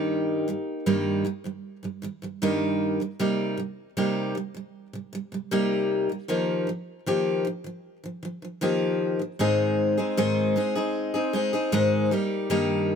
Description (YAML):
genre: pop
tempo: 77 BPM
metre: 4/4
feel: straight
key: Ab major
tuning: A4 = 442 Hz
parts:
  - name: picked steel-string acoustic guitar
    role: solo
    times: 0.0-13.0 s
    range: G2 to Ab4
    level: -24 LUFS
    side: equal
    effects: none
room: little or no reverb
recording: close, detailed microphones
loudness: -23 LUFS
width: side -7 dB against mid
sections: 0.0-9.4 A section; 9.4-13.0 B section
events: none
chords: 0.0 Eb/G; 3.2 Cm7; 6.3 Ebadd9; 9.4 Ab; 12.1 Eb/G